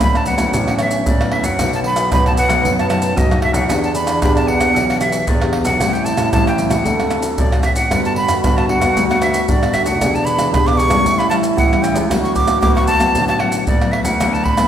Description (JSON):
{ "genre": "samba and choro", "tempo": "114 BPM", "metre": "4/4", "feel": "straight", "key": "D major", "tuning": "A4 = 442 Hz", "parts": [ { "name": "breathy bright jazz flute", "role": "melody", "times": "0.0-14.7 s", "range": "D5 to D6", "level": "-18 LUFS", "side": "right 1 dB", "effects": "none" }, { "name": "breathy trombone", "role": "second line", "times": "0.0-14.7 s", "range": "B3 to A4", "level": "-22 LUFS", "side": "right 3 dB", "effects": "none" }, { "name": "nylon-string guitar", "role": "accompaniment", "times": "0.0-14.7 s", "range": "F#2 to G4", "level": "-22 LUFS", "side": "left 4 dB", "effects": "none" }, { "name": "warm grand piano", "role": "bass", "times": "0.0-14.7 s", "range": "E1 to F#2", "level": "-21 LUFS", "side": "equal", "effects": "none" }, { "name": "maracas, surdo, pandeiro and tamborim", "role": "percussion", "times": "0.0-14.7 s", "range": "none", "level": "-18 LUFS", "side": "right 1 dB", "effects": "none" } ], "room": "wet recital hall reverb, RT60 1.3 s", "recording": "recorded in a church or concert hall", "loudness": "-13 LUFS", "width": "side -9 dB against mid", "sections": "0.0-14.7 A section", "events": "none", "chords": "0.0 D69; 1.6 B7; 3.7 Em7; 5.8 Am7; 6.9 D7; 7.9 Gmaj7; 10.0 Em7; 11.1 A7; 12.1 D69" }